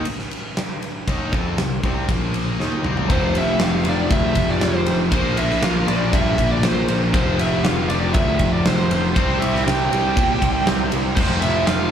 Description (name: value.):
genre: hard rock.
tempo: 119 BPM.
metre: 4/4.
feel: straight.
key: unclear.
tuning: A4 = 439 Hz.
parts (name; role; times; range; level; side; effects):
biting overdriven guitar; riff; 0.0-11.9 s; F2 to F4; -25 LUFS; left 9 dB; slapback echo.
overdriven electric guitar; riff; 0.0-11.9 s; F2 to F4; -29 LUFS; right 10 dB; none.
overdriven picked electric bass; bass; 0.0-11.9 s; F1 to Bb2; -23 LUFS; right 1 dB; none.
huge arena drum kit; drums; 0.1-11.8 s; crash cymbal, kick drum, ride cymbal, snare drum, toms; -22 LUFS; equal; none.
biting lead guitar; melody; 3.1-11.9 s; C5 to G5; -24 LUFS; right 1 dB; overdrive.
octave-fuzz lead guitar; second line; 3.1-11.9 s; C4 to G4; -30 LUFS; right 3 dB; none.
tight distorted guitar; riff; 3.1-11.9 s; F2 to C4; -27 LUFS; right 1 dB; distortion.
room: little or no reverb.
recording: live gig heard through the venue's PA, club reverb.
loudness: -17 LUFS.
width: side -8 dB against mid.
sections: 0.0-3.1 A section; 3.1-11.9 B section.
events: drum fill 2.6-3.1.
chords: 0.0 C5; 2.1 Bb5; 2.6 C5; 3.1 F5; 5.1 Bb5; 7.1 F5; 9.2 C5; 11.2 F5.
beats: 0.06 0.56 | 1.07 1.58 2.09 2.59 | 3.10 3.60 4.11 4.62 | 5.12 5.63 6.13 6.64 | 7.14 7.65 8.15 8.66 | 9.16 9.67 10.17 10.67 | 11.18 11.68.